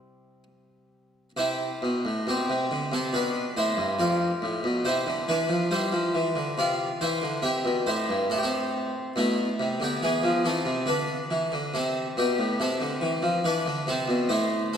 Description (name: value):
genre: classical, baroque-style suite movement for harpsichord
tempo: 70 BPM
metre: 4/4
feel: rubato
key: C major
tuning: A4 = 437 Hz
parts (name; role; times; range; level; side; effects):
- harpsichord; solo; 0.0-14.8 s; F2 to E5; -24 LUFS; equal; none
room: wet church reverb, RT60 2.9 s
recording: none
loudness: -24 LUFS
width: side -8 dB against mid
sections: 0.0-1.4 A section; 1.4-14.8 B section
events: none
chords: 0.0 C; 3.1 G7; 4.9 C; 8.3 Am; 10.0 E5; 11.7 Am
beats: 0.43 | 1.37 2.27 3.13 3.99 | 4.85 5.72 6.58 7.44 | 8.30 9.16 10.02 10.86 | 11.74 12.60 13.44 14.29